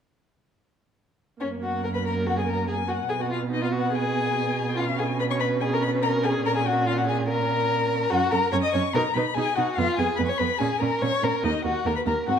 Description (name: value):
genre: quick classical-period movement for string quartet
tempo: 144 BPM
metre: 4/4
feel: straight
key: F# major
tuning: A4 = 440 Hz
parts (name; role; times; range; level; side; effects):
- warm violin; melody; 1.4-12.4 s; C#5 to D#6; -28 LUFS; left 7 dB; none
- dark violin; second line; 1.4-12.4 s; C#4 to D#5; -27 LUFS; left 1 dB; none
- warm viola; accompaniment; 1.4-12.4 s; A#3 to D#4; -29 LUFS; right 3 dB; none
- warm cello; bass; 1.4-12.4 s; D#2 to B2; -29 LUFS; right 4 dB; none
room: moderate recital hall reverb, RT60 1.3 s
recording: none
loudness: -22 LUFS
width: side -8 dB against mid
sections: 1.4-12.4 A section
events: none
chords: 1.4 F#; 3.1 G#m/B; 4.8 C#7(no3)/B; 6.5 A#m7; 8.1 F#5; 8.9 B; 9.8 Fdim; 10.6 A#m; 11.4 D#5